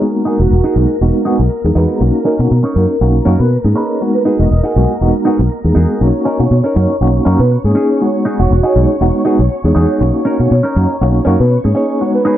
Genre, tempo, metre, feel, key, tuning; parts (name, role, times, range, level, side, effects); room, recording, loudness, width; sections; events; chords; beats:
house; 120 BPM; 4/4; swing 53% on 16ths; B major; A4 = 440 Hz
analog synth brass; melody; 0.0-12.3 s; F#4 to D#5; -20 LUFS; right 2 dB; chorus, cassette tape, low-pass filter, digital delay
tine electric piano; accompaniment; 0.0-12.4 s; G#3 to G#4; -16 LUFS; equal; fast tremolo, phaser, low-pass filter
string machine, full ensemble; sustained chords; 0.0-12.4 s; A#4 to C#6; -21 LUFS; left 1 dB; phaser, ensemble chorus, low-pass filter
semi-hollow electric guitar; riff; 0.3-12.4 s; C#4 to C#5; -20 LUFS; right 1 dB; phaser, low-pass filter
fingered electric bass; bass; 0.4-11.7 s; E1 to B2; -12 LUFS; equal; low-pass filter
light reverb; -10 LUFS; side -12 dB against mid
0.0-12.4 A section
filter sweep 0.0-12.4
0.0 Emaj9; 2.0 Bmaj9; 4.0 Emaj9; 6.0 Bmaj9; 8.0 Emaj9; 10.0 Bmaj9
| 0.01 0.51 1.01 1.51 | 2.01 2.51 3.01 3.51 | 4.01 4.51 5.01 5.51 | 6.01 6.51 7.01 7.51 | 8.01 8.51 9.01 9.51 | 10.01 10.51 11.01 11.51 | 12.01